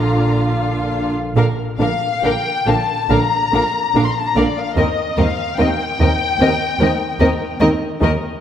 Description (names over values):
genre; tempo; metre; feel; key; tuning
classical, slow romantic movement for string orchestra; 59-76 BPM; 4/4; rubato; Bb major; A4 = 440 Hz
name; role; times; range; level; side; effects
muted studio violin section; melody; 0.0-7.6 s; D5 to C6; -20 LUFS; left 5 dB; none
muted symphonic violin section; second line; 0.0-8.1 s; F4 to F5; -23 LUFS; left 2 dB; none
muted studio viola section; accompaniment; 0.0-8.1 s; D3 to Eb4; -21 LUFS; equal; none
muted studio cello section; bass; 0.0-8.1 s; Eb2 to Bb2; -23 LUFS; right 2 dB; none
muted studio double bass section; bass; 0.0-8.1 s; Bb1 to Eb2; -22 LUFS; right 2 dB; none
room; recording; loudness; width
wet concert hall reverb, RT60 2.0 s; none; -15 LUFS; side -9 dB against mid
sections
0.0-1.4 A section; 1.4-8.4 A section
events
none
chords
0.0 Bb; 4.8 Eb6